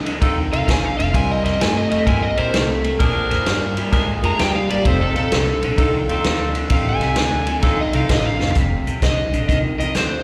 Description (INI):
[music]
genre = electric blues shuffle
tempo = 130 BPM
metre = 4/4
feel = swing 66% on 8ths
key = F mixolydian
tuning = A4 = 439 Hz
[part]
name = overdriven slide guitar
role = melody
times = 0.0-10.2 s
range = A4 to Bb5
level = -25 LUFS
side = equal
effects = slapback echo
[part]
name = electric guitar through a small old amp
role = riff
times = 0.0-10.2 s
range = F2 to Bb3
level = -25 LUFS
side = equal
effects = subtle chorus, slapback echo
[part]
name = upright bass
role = bass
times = 0.0-10.2 s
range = F1 to Bb2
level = -26 LUFS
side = equal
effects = none
[part]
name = vintage drum kit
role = drums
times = 0.1-10.1 s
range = hi-hat, kick drum, ride cymbal, snare drum, toms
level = -24 LUFS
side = equal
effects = none
[part]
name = warm saxophone section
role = stabs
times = 0.2-8.3 s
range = C4 to Bb4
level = -27 LUFS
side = equal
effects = slapback echo, digital delay
[sound]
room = light reverb, small room ambience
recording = live gig heard through the venue's PA, recital hall reverb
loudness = -18 LUFS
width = mono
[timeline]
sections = 0.0-8.6 A section; 8.6-10.2 B section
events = electric slide guitar solo 0.0-8.6; drum fill 8.3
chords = 0.0 F7; 1.1 C7; 3.0 Bb7; 4.8 F7; 8.6 F7(no3)